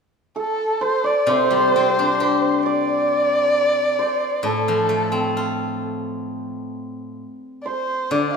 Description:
chinese traditional, Chinese chamber ensemble; 66 BPM; 2/4; rubato; D yu mode; A4 = 437 Hz
dark erhu; melody; 0.4-8.4 s; A4 to F5; -21 LUFS; equal
hammered dulcimer; second line; 0.4-8.4 s; A4 to D5; -23 LUFS; right 3 dB
steel-string zither; accompaniment; 1.3-8.4 s; A2 to G4; -24 LUFS; left 3 dB
wet recital hall reverb, RT60 1.6 s; minimal, uncompressed stereo recording; -18 LUFS; side -5 dB against mid
0.0-8.4 A section

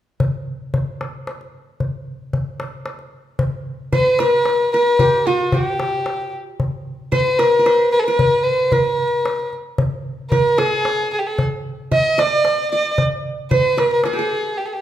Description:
Arabic maqam ensemble; 113 BPM; 3/4; straight; A4 = 440 Hz
darbuka; percussion; 0.2-14.2 s; -22 LUFS; left 1 dB
dark violin; melody; 3.9-14.8 s; F4+43c to Eb5+40c; -17 LUFS; equal
qanun; second line; 3.9-14.8 s; F#4-50c to E5-50c; -22 LUFS; right 2 dB
moderate recital hall reverb, RT60 1.4 s; minimal, uncompressed stereo recording; -16 LUFS; side -11 dB against mid
0.2-3.4 A section; 3.4-14.8 B section
break 14.6

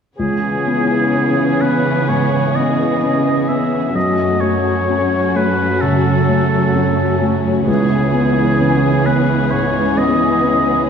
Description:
cinematic, emotional film score for orchestra; 64 BPM; 4/4; rubato; C# minor; A4 = 440 Hz
dark symphonic violin section; second line; 0.2-10.9 s; C#4 to G#4; -22 LUFS; left 5 dB
warm oboe; second line; 0.2-10.9 s; G#4 to E5; -20 LUFS; equal
felt-muted upright piano; accompaniment; 0.2-10.9 s; C#2 to C#4; -19 LUFS; equal
warm symphonic viola section; accompaniment; 0.2-10.9 s; E3 to B3; -22 LUFS; equal
concert harp; arpeggios; 0.2-10.9 s; F#2 to C#5; -21 LUFS; right 1 dB
warm studio cello section; bass; 0.2-10.9 s; C#2 to C#3; -22 LUFS; right 3 dB
wet scoring stage reverb, RT60 1.8 s; heard from further back in the room; -13 LUFS; side -7 dB against mid
0.2-10.9 A section
0.2 C#m7; 4.0 F#m; 7.7 C#m7

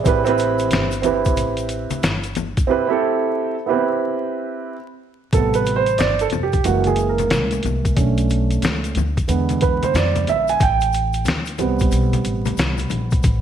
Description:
hip hop, jazz-hop; 91 BPM; 4/4; swing 63% on 16ths; A minor; A4 = 440 Hz
dark upright piano; accompaniment; 0.0-13.4 s; C3 to G#5; -20 LUFS; right 5 dB
upright bass; bass; 0.1-13.4 s; F1 to F2; -22 LUFS; equal
trip hop sampler-style drum kit; drums; 0.1-13.4 s; hi-hat, kick drum, snare drum; -21 LUFS; left 1 dB
tube shaker and congas; percussion; 0.1-13.4 s; -30 LUFS; left 9 dB
moderate echo chamber reverb, RT60 1.2 s, small room reverb; 1960s-style stereo, vinyl crackle; -17 LUFS; side -9 dB against mid
0.0-5.3 A section; 5.3-13.4 B section
break 2.7-5.3; upright piano solo 5.3-13.4
0.1 Am7; 6.6 F#7; 8.0 Bm7; 9.3 E7; 10.6 Am7

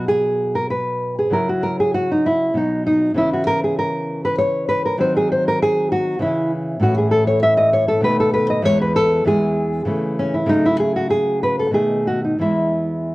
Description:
classical, baroque-style dance for nylon-string guitar; 98 BPM; 3/4; rubato; B major, E major from 6.8 s; A4 = 438 Hz
nylon-string guitar; solo; 0.0-13.1 s; E2 to E5; -16 LUFS; equal
light reverb; worn, warbling old tape, cassette tape, warbly pitch drift; -16 LUFS; side -19 dB against mid
0.0-13.1 A section
0.0 B5; 1.3 F#5/C#; 2.6 B; 3.2 C#m; 5.0 D#m6; 6.2 C#m; 6.8 A; 8.0 B7; 8.7 E; 9.9 A/C#; 10.5 F#m/C#; 11.8 B7; 12.4 E

